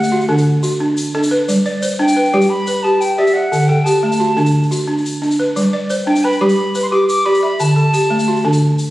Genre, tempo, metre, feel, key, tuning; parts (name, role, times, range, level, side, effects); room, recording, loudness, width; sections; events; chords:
west african traditional, West African string and xylophone music; 118 BPM (dotted quarters); 12/8; straight; G major; A4 = 440 Hz
jazz flute; melody; 0.0-8.6 s; E5 to D6; -19 LUFS; equal
balafon; arpeggios; 0.0-8.9 s; D3 to E5; -14 LUFS; equal
tube shaker; percussion; 0.0-8.9 s; -29 LUFS; left 1 dB
moderate recital hall reverb, RT60 1.4 s; recorded on a phone in the room, studio reverb; -13 LUFS; side -16 dB against mid
0.0-8.9 A section
0.0 D; 1.5 G; 3.5 D; 5.6 G; 7.6 D